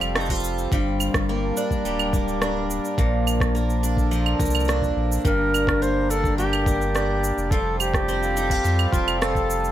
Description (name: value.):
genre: folktronica.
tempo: 106 BPM.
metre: 4/4.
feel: straight.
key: G minor.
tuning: A4 = 440 Hz.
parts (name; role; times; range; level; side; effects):
hand-pumped harmonium; sustained chords; 0.0-9.7 s; F3 to Bb4; -29 LUFS; right 3 dB; plate reverb.
picked twelve-string acoustic guitar; arpeggios; 0.0-9.7 s; G2 to F4; -26 LUFS; left 1 dB; ping-pong delay, plate reverb.
warm sub bass; bass; 0.0-9.7 s; D1 to F2; -25 LUFS; equal; none.
electronic claves, shaker and rim click; drums; 0.0-9.7 s; none; -28 LUFS; right 2 dB; overdrive.
electronic kick drum; drums; 0.3-9.5 s; none; -24 LUFS; equal; overdrive.
bright baroque flute; melody; 5.2-9.7 s; F4 to C5; -24 LUFS; equal; ping-pong delay, plate reverb.
room: light reverb.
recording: none.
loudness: -20 LUFS.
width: side -12 dB against mid.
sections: 0.0-9.7 A section.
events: none.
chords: 0.0 Fadd9; 0.7 Gm; 3.0 Bbmaj7; 5.3 Gm; 7.5 Fadd9.